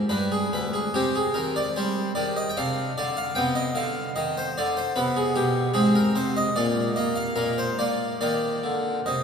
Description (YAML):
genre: classical, baroque-style suite movement for harpsichord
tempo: 74 BPM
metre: 3/4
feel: uneven beats, rubato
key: C minor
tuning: A4 = 440 Hz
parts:
  - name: harpsichord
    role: solo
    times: 0.0-9.2 s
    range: D2 to G5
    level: -22 LUFS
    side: equal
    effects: none
room: wet cathedral reverb, RT60 7.2 s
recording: minimal, uncompressed stereo recording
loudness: -22 LUFS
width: side -6 dB against mid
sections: 0.0-9.2 A section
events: none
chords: 0.1 G5; 0.9 Cm; 2.6 Csus24; 3.4 Cmmaj7; 5.0 G/C; 5.8 Abadd9; 6.6 N.C.; 8.2 Eb5